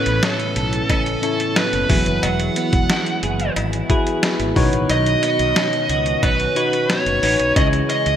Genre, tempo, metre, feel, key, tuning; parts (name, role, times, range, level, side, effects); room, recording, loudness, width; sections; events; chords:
1980s-style pop; 90 BPM; 4/4; straight; B mixolydian; A4 = 440 Hz
dark smooth lead guitar; melody; 0.0-8.2 s; A4 to F#5; -21 LUFS; right 1 dB; overdrive
tine electric piano; accompaniment; 0.0-8.2 s; A2 to C#5; -23 LUFS; left 2 dB; analog chorus
ensemble organ-string; sustained chords; 0.0-8.2 s; C#3 to F#4; -30 LUFS; right 1 dB
twelve-string electric guitar; riff; 0.0-8.2 s; D#3 to A4; -26 LUFS; right 3 dB; analog chorus, digital delay
mellow fretless electric bass; bass; 0.1-8.2 s; E1 to C#2; -24 LUFS; equal; wide subtle chorus
lo-fi sampler-style drum kit; drums; 0.1-8.2 s; hi-hat, kick drum, snare drum; -21 LUFS; equal; overdrive, gated reverb
cowbell; percussion; 0.2-7.7 s; -34 LUFS; left 4 dB
moderate lush hall reverb, RT60 2.5 s; bright 1980s-style digital production; -16 LUFS; side -9 dB against mid
0.0-8.2 A section
0.0 Aadd9; 1.9 Eadd9; 4.6 Badd9; 7.6 C#m